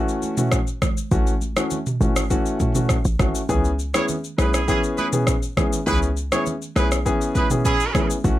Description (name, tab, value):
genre	afrobeats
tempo	101 BPM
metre	4/4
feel	straight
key	C# minor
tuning	A4 = 440 Hz
part	dark concert grand piano	accompaniment	0.0-8.4 s	E3 to G#4	-24 LUFS	left 2 dB	none
part	afro-pop drum kit	drums	0.1-8.4 s	kick drum, rim click, shaker, toms	-22 LUFS	equal	overdrive
part	congas	percussion	0.2-8.4 s	none	-32 LUFS	right 3 dB	none
part	short 808-style bass	bass	1.1-8.4 s	G#1 to C#2	-22 LUFS	equal	none
part	clear horn section	second line	3.9-8.1 s	C#4 to C#5	-24 LUFS	right 3 dB	none
room	light reverb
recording	none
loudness	-19 LUFS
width	side -14 dB against mid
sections	0.0-8.4 A section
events	none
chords	0.0 A6; 3.5 C#m7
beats	0.52 | 1.12 1.71 2.30 2.90 | 3.49 4.09 4.68 5.27 | 5.87 6.46 7.06 7.65 | 8.24